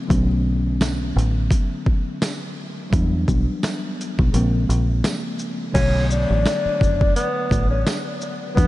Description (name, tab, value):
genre	hip hop, boom-bap hip-hop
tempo	85 BPM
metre	4/4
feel	swing 57% on 16ths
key	B minor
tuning	A4 = 440 Hz
part	tine electric piano	accompaniment	0.0-8.7 s	C#3 to C#5	-26 LUFS	left 1 dB	medium stereo tremolo, high-pass filter, low-pass filter
part	deep dub fingered electric bass	bass	0.1-8.7 s	F#1 to E2	-20 LUFS	equal	none
part	boom bap sampler-style drum kit	drums	0.1-8.7 s	crash cymbal, hi-hat, kick drum, shaker, snare drum	-23 LUFS	equal	overdrive
part	tambourine	percussion	0.8-8.1 s	none	-42 LUFS	right 7 dB	none
part	breathy tenor saxophone	melody	5.7-8.7 s	B3 to D4	-23 LUFS	left 2 dB	high-pass filter, low-pass filter, ping-pong delay
room	light reverb, digital ambience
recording	vinyl crackle, nothing above 10.7 kHz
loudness	-18 LUFS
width	side -16 dB against mid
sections	0.0-5.7 A section; 5.7-8.7 B section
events	kick muted 4.3-5.7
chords	0.1 Bm9; 2.9 Em9; 4.3 A#m9; 5.7 Bm9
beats	| 0.10 0.81 1.51 2.22 | 2.92 3.63 4.33 5.04 | 5.75 6.45 7.16 7.87 | 8.57